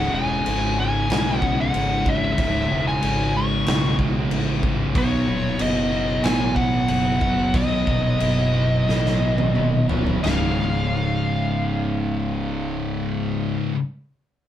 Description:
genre	stoner and doom metal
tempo	92 BPM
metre	4/4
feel	uneven beats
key	unclear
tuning	A4 = 440 Hz
part	fuzz lead guitar	melody	0.0-13.6 s	C#5 to C#6	-26 LUFS	left 1 dB	distortion
part	crunchy overdriven guitar	riff	0.0-13.8 s	C#2 to B3	-27 LUFS	equal	none
part	thick fuzz guitar	riff	0.0-13.8 s	C#2 to B3	-24 LUFS	equal	distortion
part	fuzz fingered electric bass	bass	0.0-13.6 s	C#1 to B1	-27 LUFS	equal	overdrive
part	big rock drum kit	drums	0.5-10.4 s	china cymbal, crash cymbal, kick drum, snare drum, toms	-25 LUFS	equal	none
room	moderate studio ambience, RT60 0.5 s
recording	band playing live in one room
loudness	-19 LUFS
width	side -11 dB against mid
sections	0.0-10.2 A section; 10.2-13.0 B section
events	slowing down 5.0-10.2; drum fill 8.9-10.2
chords	0.0 C#m; 5.0 B; 10.2 C#

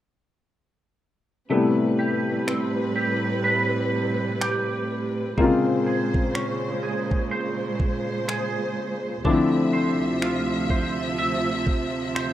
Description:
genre	contemporary R&B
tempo	62 BPM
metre	4/4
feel	swing 58% on 16ths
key	A minor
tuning	A4 = 440 Hz
part	warm baby grand piano	accompaniment	1.5-12.3 s	C3 to F4	-24 LUFS	left 3 dB	plate reverb
part	rich studio string section	sustained chords	1.5-12.3 s	D2 to E5	-26 LUFS	right 2 dB	plate reverb
part	clean electric guitar	arpeggios	1.5-12.3 s	A3 to E5	-29 LUFS	right 2 dB	ensemble chorus, ping-pong delay
part	smooth R&B drum kit	drums	2.5-12.3 s	finger snaps, kick drum	-25 LUFS	right 1 dB	none
room	wet studio ambience, RT60 0.5 s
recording	rough home demo mix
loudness	-21 LUFS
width	side -12 dB against mid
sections	1.5-12.3 A section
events	none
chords	1.5 Am9; 5.4 Bbm9; 9.2 Dm9

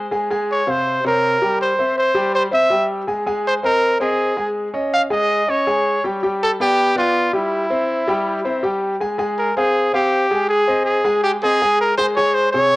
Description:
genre	latin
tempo	162 BPM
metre	4/4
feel	straight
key	F minor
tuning	A4 = 440 Hz
part	bright concert grand piano	accompaniment	0.0-12.8 s	C3 to Ab5	-20 LUFS	left 1 dB	cassette tape
part	bright trumpet	melody	0.5-12.8 s	E4 to F5	-17 LUFS	equal	cassette tape
room	moderate spring reverb, RT60 1.3 s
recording	home recording on cassette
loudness	-16 LUFS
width	side -20 dB against mid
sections	0.0-9.0 A section; 9.0-12.8 A section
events	none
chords	0.1 Dbmaj7; 1.6 C; 3.1 Abadd9; 4.6 Dbsus2; 6.0 G7; 7.5 C; 9.0 Fm; 10.5 Ab; 12.0 Db5

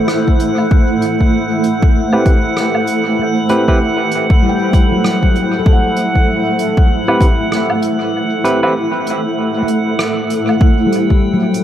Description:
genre	ambient dub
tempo	97 BPM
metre	4/4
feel	swing 60% on 16ths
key	A dorian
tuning	A4 = 439 Hz
part	granular cloud pad	sustained chords	0.0-11.6 s	A3 to C5	-16 LUFS	equal	built-in reverb
part	drifting glass-harmonics texture	texture	0.0-11.6 s	F#5 to G5	-22 LUFS	right 4 dB	chorus, built-in reverb
part	vintage brush drum kit	drums	0.1-11.6 s	hi-hat, rim click, woodblock	-24 LUFS	equal	dub echo
part	electronic kick drum	drums	0.3-11.2 s	none	-11 LUFS	equal	overdrive
part	barky tine electric piano	stabs	2.1-8.7 s	C4 to B4	-19 LUFS	equal	overdrive, dub echo
part	handpan	arpeggios	3.2-11.6 s	F#3 to G5	-20 LUFS	left 2 dB	dub echo
room	moderate spring reverb, RT60 2.1 s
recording	none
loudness	-11 LUFS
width	side -11 dB against mid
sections	0.0-10.6 A section; 10.6-11.6 B section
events	break 8.1-10.6; band accent 10.0-10.3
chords	0.0 Am7; 10.6 A7(no3)

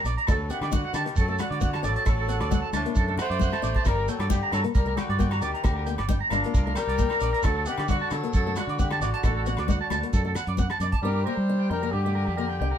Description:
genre	highlife guitar band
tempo	134 BPM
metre	4/4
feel	straight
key	unclear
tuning	A4 = 440 Hz
part	breathy trumpet	melody	0.0-12.8 s	D4 to C5	-32 LUFS	left 3 dB	none
part	edgy tenor saxophone	second line	0.0-12.8 s	A2 to A3	-37 LUFS	left 3 dB	none
part	electric guitar at the edge of break-up	arpeggios	0.0-12.8 s	G4 to Bb5	-30 LUFS	right 5 dB	harmonic tremolo
part	fingered electric bass	bass	0.0-12.7 s	G1 to G3	-28 LUFS	equal	none
part	fingerpicked acoustic archtop guitar	accompaniment	0.1-12.7 s	A3 to D4	-35 LUFS	left 8 dB	none
part	cloth-damped thuddy drum kit	drums	0.1-11.0 s	hi-hat, kick drum, rim click	-26 LUFS	equal	none
part	congas	percussion	0.1-10.9 s	none	-34 LUFS	left 7 dB	none
part	shekere	percussion	0.1-10.9 s	none	-35 LUFS	right 3 dB	none
part	agogo bells	percussion	0.3-10.8 s	none	-41 LUFS	left 6 dB	none
room	moderate studio reverb, RT60 0.7 s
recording	band playing live in one room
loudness	-23 LUFS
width	side -9 dB against mid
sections	0.0-11.0 A section; 11.0-12.8 B section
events	drum fill 3.5-3.9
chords	0.3 D; 3.9 Gm; 7.4 D; 11.0 Gm

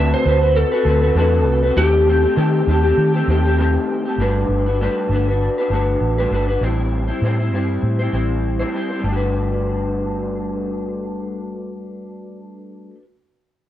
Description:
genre	indie pop, bedroom pop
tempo	99 BPM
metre	4/4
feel	swing 55% on 16ths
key	G major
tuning	A4 = 441 Hz
part	electric slide guitar	melody	0.0-3.5 s	G4 to E5	-20 LUFS	equal	analog chorus, tape echo
part	electric guitar through a small old amp	accompaniment	0.0-13.0 s	A2 to C5	-20 LUFS	left 1 dB	ensemble chorus, warbly pitch drift
part	vintage muted fingered electric bass	bass	0.0-12.9 s	G1 to Eb3	-19 LUFS	equal	none
room	light reverb, digital ambience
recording	cassette tape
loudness	-16 LUFS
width	side -12 dB against mid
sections	0.0-4.2 A section; 4.2-9.0 B section; 9.0-11.5 C section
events	none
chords	0.0 D13; 1.8 Cm6/Eb; 4.2 Gmaj9; 6.6 Am7; 9.0 Gmaj9

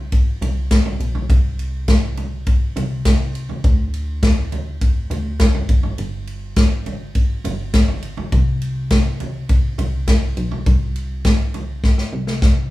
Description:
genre	piano-driven pop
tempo	102 BPM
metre	4/4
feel	straight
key	unclear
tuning	A4 = 440 Hz
part	plucky analog bass	bass	0.0-12.7 s	G1 to D2	-24 LUFS	equal	none
part	natural country drum kit	drums	0.1-12.6 s	kick drum, ride cymbal, snare drum, toms	-16 LUFS	equal	none
room	light reverb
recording	band playing live in one room, studio reverb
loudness	-16 LUFS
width	side -17 dB against mid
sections	0.0-12.7 A section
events	drum fill 11.8-12.7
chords	none

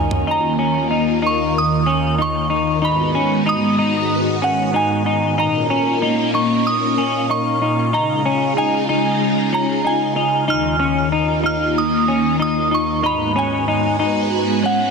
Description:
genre	dream pop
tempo	94 BPM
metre	4/4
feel	straight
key	Eb minor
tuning	A4 = 438 Hz
part	soft synth bell	melody	0.0-14.9 s	Gb5 to F6	-21 LUFS	right 2 dB	chorus, ping-pong delay
part	semi-hollow electric guitar	accompaniment	0.0-0.8 s	Eb3 to Bb4	-32 LUFS	right 5 dB	none
part	phased string machine	sustained chords	0.0-14.9 s	Eb2 to Gb4	-19 LUFS	equal	ensemble chorus, phaser
part	semi-hollow electric guitar	arpeggios	0.0-14.9 s	Db4 to Eb4	-21 LUFS	left 3 dB	analog chorus, ping-pong delay
room	moderate huge ambient reverb, RT60 4.3 s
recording	dense, heavily limited modern master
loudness	-15 LUFS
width	side -5 dB against mid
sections	0.3-14.9 A section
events	none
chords	0.3 Ebsus2; 2.8 Abm7; 5.4 Bbm; 7.9 Dbadd9; 10.5 Ebsus2; 13.0 Abm7

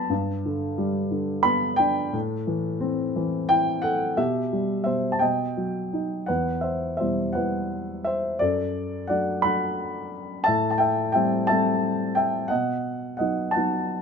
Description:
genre	classical, lyrical solo piano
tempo	58 BPM (dotted quarters)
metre	6/8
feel	rubato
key	E minor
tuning	A4 = 440 Hz
part	dark baby grand piano	solo	0.0-14.0 s	E2 to B5	-22 LUFS	equal	none
room	light reverb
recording	minimal, uncompressed stereo recording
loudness	-22 LUFS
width	side -6 dB against mid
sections	0.0-6.3 A section; 6.3-14.0 B section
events	none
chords	0.1 G; 2.1 Am; 4.2 Em/B; 5.2 B; 6.3 Em; 8.4 D/F#; 10.5 Am7; 12.5 B

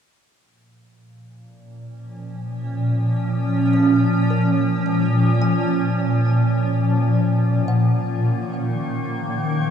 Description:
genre	ambient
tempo	free time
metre	none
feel	none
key	Bb minor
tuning	A4 = 439 Hz
part	bowed-like drone	drone	1.2-9.7 s	F3 to Bb3	-39 LUFS	left 3 dB	none
part	granular cloud pad	sustained chords	2.2-9.7 s	Bb2 to Db4	-18 LUFS	equal	built-in reverb, lush chorus
part	kalimba	arpeggios	3.7-9.7 s	Ab3 to Ab5	-37 LUFS	left 2 dB	diffuse ambient delay
room	wet huge ambient reverb, RT60 6.9 s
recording	dreamy mix soaked in reverb, cassette tape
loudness	-17 LUFS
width	side -8 dB against mid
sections	0.3-9.7 A section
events	fade-in on kalimba 0.3-9.7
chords	0.3 Bbm7; 7.1 Ebm9

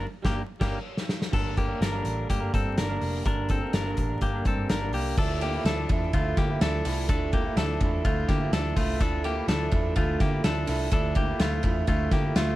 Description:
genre	jangly indie pop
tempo	125 BPM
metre	4/4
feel	straight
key	unclear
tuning	A4 = 439 Hz
part	electric guitar through a small old amp	accompaniment	0.0-12.6 s	G2 to Bb4	-32 LUFS	right 5 dB	none
part	clean electric guitar	arpeggios	0.0-12.6 s	A3 to Bb4	-31 LUFS	left 4 dB	none
part	vintage muted picked electric bass	bass	0.0-12.6 s	F1 to D3	-30 LUFS	equal	none
part	loose indie drum kit	drums	0.2-12.5 s	crash cymbal, hi-hat, kick drum, ride cymbal, snare drum	-27 LUFS	equal	none
room	light reverb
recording	vinyl crackle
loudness	-24 LUFS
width	side -16 dB against mid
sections	0.0-1.3 A section; 1.3-5.2 B section; 5.2-12.6 C section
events	band accent 0.0-1.3; drum fill 0.4-1.3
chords	0.0 Gm; 5.2 Dmadd9

